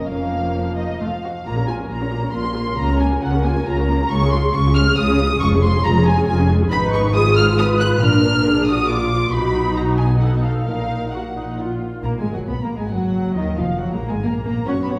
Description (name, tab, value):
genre	quick classical-period movement for string orchestra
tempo	137 BPM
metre	3/4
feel	straight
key	Bb minor, Eb minor from 6.7 s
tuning	A4 = 442 Hz
part	muted studio violin section	melody	0.0-15.0 s	Ab3 to Gb6	-28 LUFS	equal	none
part	muted studio violin section	second line	0.0-15.0 s	Db4 to Gb6	-30 LUFS	equal	none
part	muted studio viola section	accompaniment	0.0-15.0 s	Eb3 to Db5	-24 LUFS	equal	none
part	muted studio cello section	bass	0.0-15.0 s	F2 to Db4	-25 LUFS	equal	none
part	muted symphonic double bass section	bass	0.0-15.0 s	F1 to Gb2	-24 LUFS	equal	none
room	wet recital hall reverb, RT60 1.9 s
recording	heard from further back in the room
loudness	-19 LUFS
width	mono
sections	0.0-1.5 A section; 1.5-12.0 B section; 12.0-15.0 C section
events	none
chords	0.1 Bbm/F; 1.0 F; 1.5 Bbm; 2.8 Bbm/Db; 4.1 Db; 5.4 Db/F; 6.7 Fm7b5/Ab; 8.0 Bb; 9.3 B; 10.2 B7; 10.7 Ebm/Bb; 11.6 Bb5; 12.0 Abm9/Gb; 13.4 Ebm